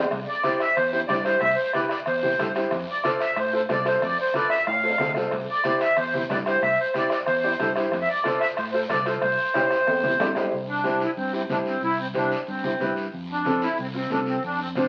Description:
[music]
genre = latin, cumbia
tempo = 184 BPM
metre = 4/4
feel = straight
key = C major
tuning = A4 = 440 Hz
[part]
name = fingered electric bass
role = bass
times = 0.0-14.9 s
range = C2 to A2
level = -37 LUFS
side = equal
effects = none
[part]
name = bombo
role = percussion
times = 0.1-10.5 s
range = none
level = -35 LUFS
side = equal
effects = none
[part]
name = guiro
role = percussion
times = 0.1-14.9 s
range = none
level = -41 LUFS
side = equal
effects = none
[part]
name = timbales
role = percussion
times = 0.1-10.4 s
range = none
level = -35 LUFS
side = equal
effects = none
[part]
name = accordion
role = melody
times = 0.3-14.8 s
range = C4 to F5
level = -26 LUFS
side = equal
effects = light tremolo tuning
[part]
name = bright upright piano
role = accompaniment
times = 0.4-14.9 s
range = C4 to D5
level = -29 LUFS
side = equal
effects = none
[part]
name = congas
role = percussion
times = 0.4-14.9 s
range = none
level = -39 LUFS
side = equal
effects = none
[sound]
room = wet studio reverb, RT60 0.8 s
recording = very old 78 rpm record, vinyl crackle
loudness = -24 LUFS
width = mono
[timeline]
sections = 0.1-10.5 A section; 10.5-14.9 B section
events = drum fill 4.7-5.3, 9.6-10.5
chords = 0.1 Cadd9; 2.7 F; 5.3 Cadd9; 7.9 F; 9.2 C; 10.5 Cadd9; 13.1 F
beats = | 0.12 0.44 0.77 1.09 | 1.42 1.74 2.07 2.39 | 2.72 3.04 3.37 3.70 | 4.02 4.35 4.67 5.00 | 5.32 5.65 5.97 6.30 | 6.62 6.95 7.28 7.60 | 7.93 8.25 8.58 8.90 | 9.23 9.55 9.88 10.20 | 10.53 10.86 11.18 11.51 | 11.83 12.16 12.48 12.81 | 13.13 13.46 13.78 14.11 | 14.43 14.76

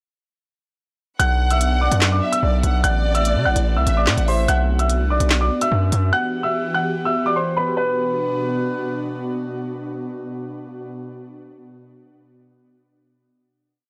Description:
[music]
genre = hip hop, drill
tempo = 146 BPM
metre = 4/4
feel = half-time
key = B phrygian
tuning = A4 = 445 Hz
[part]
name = warm baby grand piano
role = melody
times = 1.2-9.0 s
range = B4 to F#6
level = -24 LUFS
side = equal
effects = none
[part]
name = warm studio violin section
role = second line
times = 1.2-4.5 s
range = D5 to F#5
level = -28 LUFS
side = equal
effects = analog delay
[part]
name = airy breathy pad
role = sustained chords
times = 1.3-10.9 s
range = B2 to G4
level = -29 LUFS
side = equal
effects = chorus
[part]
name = distorted 808-style bass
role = bass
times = 1.2-6.1 s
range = A1 to C3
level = -21 LUFS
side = equal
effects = distortion
[part]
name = drill drum kit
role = drums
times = 1.2-6.0 s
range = handclaps, hi-hat, snare drum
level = -25 LUFS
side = equal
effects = none
[sound]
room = studio ambience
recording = dry, gritty hardware recording, transformer saturation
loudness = -20 LUFS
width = mono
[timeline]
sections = 1.2-7.8 hook; 7.8-11.1 final chord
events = none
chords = 1.2 Bm; 2.8 Am; 4.5 Bm; 6.1 Emadd9; 7.8 Bm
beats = | 1.20 1.61 2.02 2.43 | 2.84 3.25 3.66 4.07 | 4.48 4.89 5.31 5.72 | 6.13 6.54 6.95 7.36 | 7.77 8.18 8.59 9.01 | 9.42 9.83 10.24 10.65

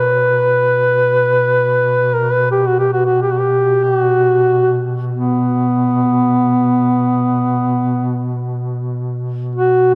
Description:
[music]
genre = caucasian folk, Caucasian lament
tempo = free time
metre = none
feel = none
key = unclear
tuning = A4 = 442 Hz
[part]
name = warm duduk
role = melody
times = 0.0-9.9 s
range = B3 to B4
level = -16 LUFS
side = equal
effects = none
[part]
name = mellow duduk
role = drone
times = 0.0-9.9 s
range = B2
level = -23 LUFS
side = equal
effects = none
[sound]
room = wet church reverb, RT60 3.3 s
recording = dark, warm production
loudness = -15 LUFS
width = mono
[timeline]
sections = 0.0-9.9 A section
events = none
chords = none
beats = free time

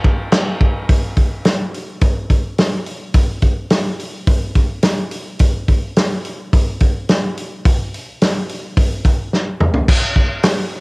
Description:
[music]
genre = rock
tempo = 107 BPM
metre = 4/4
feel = straight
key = none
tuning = none
[part]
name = loose indie drum kit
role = drums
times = 0.0-10.6 s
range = crash cymbal, hi-hat, kick drum, snare drum, toms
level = -14 LUFS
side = equal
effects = cassette tape
[sound]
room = little or no reverb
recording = home recording on cassette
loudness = -14 LUFS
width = side -32 dB against mid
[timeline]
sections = 0.9-9.9 A section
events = drum fill 9.3-9.9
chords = none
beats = 0.33 | 0.89 1.45 2.02 2.58 | 3.15 3.71 4.27 4.84 | 5.40 5.96 6.53 7.09 | 7.65 8.21 8.77 9.33 | 9.88 10.44

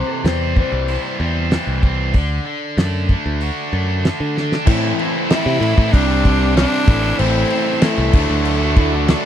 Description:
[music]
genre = classic rock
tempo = 95 BPM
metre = 4/4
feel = straight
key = A dorian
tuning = A4 = 440 Hz
[part]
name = clean lap steel guitar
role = second line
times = 0.0-1.2, 8.8-9.3 s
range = E4 to C5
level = -25 LUFS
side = left 4 dB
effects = none
[part]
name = cranked stack guitar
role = riff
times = 0.0-9.3 s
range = A2 to A4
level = -25 LUFS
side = left 14 dB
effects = overdrive
[part]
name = overdriven electric guitar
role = riff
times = 0.0-9.3 s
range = A2 to A4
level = -24 LUFS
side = right 16 dB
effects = none
[part]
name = modern bright picked electric bass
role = bass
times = 0.2-9.1 s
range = A1 to D3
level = -19 LUFS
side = equal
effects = none
[part]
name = damped 70s drum kit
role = drums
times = 0.3-9.2 s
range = crash cymbal, hi-hat, kick drum, snare drum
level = -17 LUFS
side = equal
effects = none
[part]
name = picked steel-string acoustic guitar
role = accompaniment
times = 4.7-9.3 s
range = A2 to G4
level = -26 LUFS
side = left 8 dB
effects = none
[part]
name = bright tonewheel organ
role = sustained chords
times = 4.7-9.3 s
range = G3 to D5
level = -31 LUFS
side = right 1 dB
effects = none
[part]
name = raw garage guitar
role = riff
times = 4.7-9.3 s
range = A2 to D4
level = -23 LUFS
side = right 2 dB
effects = overdrive
[part]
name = raspy tenor saxophone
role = melody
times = 5.3-9.3 s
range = A3 to E4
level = -21 LUFS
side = equal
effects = slapback echo
[sound]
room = little or no reverb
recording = dry, close 1970s-style studio recording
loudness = -15 LUFS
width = side -10 dB against mid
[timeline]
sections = 0.0-4.7 A section; 4.7-9.3 B section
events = drum fill 4.4-4.7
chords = 0.0 C; 2.1 D; 4.7 Am; 5.9 Csus2; 6.9 Am; 8.1 D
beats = 0.25 0.89 1.52 | 2.15 2.78 3.41 4.04 | 4.67 5.30 5.93 6.56 | 7.19 7.82 8.45 9.08

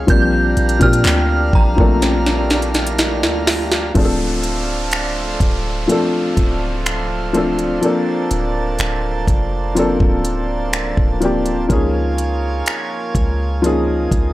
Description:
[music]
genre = contemporary R&B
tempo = 62 BPM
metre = 4/4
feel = straight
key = Bb major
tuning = A4 = 440 Hz
[part]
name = felt-muted upright piano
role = accompaniment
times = 0.0-14.3 s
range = F3 to A4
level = -19 LUFS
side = left 2 dB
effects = none
[part]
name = pedal harmonium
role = sustained chords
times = 0.0-14.3 s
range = G3 to Bb5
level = -25 LUFS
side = right 4 dB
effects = none
[part]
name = warm 808-style bass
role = bass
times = 0.0-14.3 s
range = D1 to Bb2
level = -21 LUFS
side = equal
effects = none
[part]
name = celesta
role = texture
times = 0.0-4.4 s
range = G5 to Ab5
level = -34 LUFS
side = left 2 dB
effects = none
[part]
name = synth chime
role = melody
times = 0.1-3.4 s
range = Bb5 to G6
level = -22 LUFS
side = right 1 dB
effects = ensemble chorus, tremolo, tape echo
[part]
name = smooth R&B drum kit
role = drums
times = 0.1-14.3 s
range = finger snaps, handclaps, hi-hat, kick drum, snare drum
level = -17 LUFS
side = equal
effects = none
[part]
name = downlifter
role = sound effects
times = 4.0-11.7 s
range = none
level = -30 LUFS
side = equal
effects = none
[sound]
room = little or no reverb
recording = dry, gritty hardware recording, transformer saturation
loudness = -15 LUFS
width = side -16 dB against mid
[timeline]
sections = 0.0-4.0 A section; 4.0-14.3 B section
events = drum fill 2.0-4.0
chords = 0.1 Bb6; 4.0 Dm7; 7.8 Bbmaj9/D; 11.7 Db6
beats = | 0.08 1.05 2.02 2.99 | 3.96 4.92 5.89 6.86 | 7.83 8.79 9.76 10.73 | 11.70 12.66 13.63

